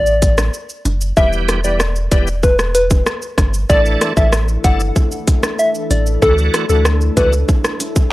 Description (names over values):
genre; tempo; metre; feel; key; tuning
dancehall; 95 BPM; 4/4; straight; unclear; A4 = 439 Hz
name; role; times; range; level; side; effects
soft struck synth lead; melody; 0.0-7.3 s; A4 to F#5; -17 LUFS; left 1 dB; chorus, tremolo, tape echo
punchy sub bass; bass; 0.0-7.4 s; E1 to D2; -17 LUFS; equal; none
island pop drum kit; drums; 0.1-8.1 s; hi-hat, kick drum, rim click, shaker; -16 LUFS; equal; overdrive
bongos; percussion; 0.4-8.1 s; none; -27 LUFS; right 1 dB; none
bright tonewheel organ; accompaniment; 1.2-7.3 s; E3 to A4; -22 LUFS; right 1 dB; overdrive, chorus vibrato, slow rotary speaker, sidechain pumping
glassy FM pad; sustained chords; 4.1-8.1 s; E3 to A4; -25 LUFS; left 2 dB; ensemble chorus, built-in reverb, sidechain pumping
room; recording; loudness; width
little or no reverb; dry, gritty hardware recording; -13 LUFS; side -18 dB against mid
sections
0.0-3.7 A section; 3.7-8.1 B section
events
none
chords
0.0 Asus4; 1.2 Em; 3.7 Asus4; 6.2 Dadd9